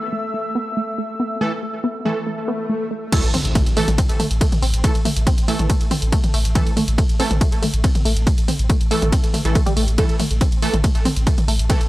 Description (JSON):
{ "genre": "driving peak-time techno", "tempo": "140 BPM", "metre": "4/4", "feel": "straight", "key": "unclear", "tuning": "A4 = 442 Hz", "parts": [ { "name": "airy breathy pad", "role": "texture", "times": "0.0-3.1 s", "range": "A3 to E6", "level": "-27 LUFS", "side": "left 1 dB", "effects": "chorus, sidechain pumping" }, { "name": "tight sequenced synth", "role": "riff", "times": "0.1-11.7 s", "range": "G3 to C4", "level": "-26 LUFS", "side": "equal", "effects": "chorus, sidechain pumping, tape echo" }, { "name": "rave stab", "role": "stabs", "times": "1.4-11.8 s", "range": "E3 to A4", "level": "-26 LUFS", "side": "right 2 dB", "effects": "chorus, built-in reverb, sidechain pumping, analog delay" }, { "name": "swell and impact", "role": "sound effects", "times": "2.4-4.8 s", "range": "none", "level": "-28 LUFS", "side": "left 1 dB", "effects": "none" }, { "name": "electronic kick drum", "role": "drums", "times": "3.1-11.8 s", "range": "none", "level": "-18 LUFS", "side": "equal", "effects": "none" }, { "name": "punchy analog drum machine", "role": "drums", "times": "3.1-11.9 s", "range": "crash cymbal, hi-hat, ride cymbal, toms", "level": "-24 LUFS", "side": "equal", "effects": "none" }, { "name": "warm sub bass", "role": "bass", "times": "3.2-11.9 s", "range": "A1", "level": "-22 LUFS", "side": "equal", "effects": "tube saturation, sidechain pumping, low-pass filter" } ], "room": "little or no reverb", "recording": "dry, gritty hardware recording, transformer saturation", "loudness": "-16 LUFS", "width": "side -18 dB against mid", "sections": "0.0-3.1 A section; 3.1-11.9 B section", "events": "filter sweep on synth arpeggio sound 0.0-3.1; swell 2.4-3.1; drop 3.1-11.9; impact 3.1-4.8", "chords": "0.0 A5", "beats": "0.12 0.55 0.98 | 1.41 1.84 2.27 2.70 | 3.12 3.55 3.98 4.41 | 4.84 5.27 5.70 6.12 | 6.55 6.98 7.41 7.84 | 8.27 8.70 9.12 9.55 | 9.98 10.41 10.84 11.27 | 11.70" }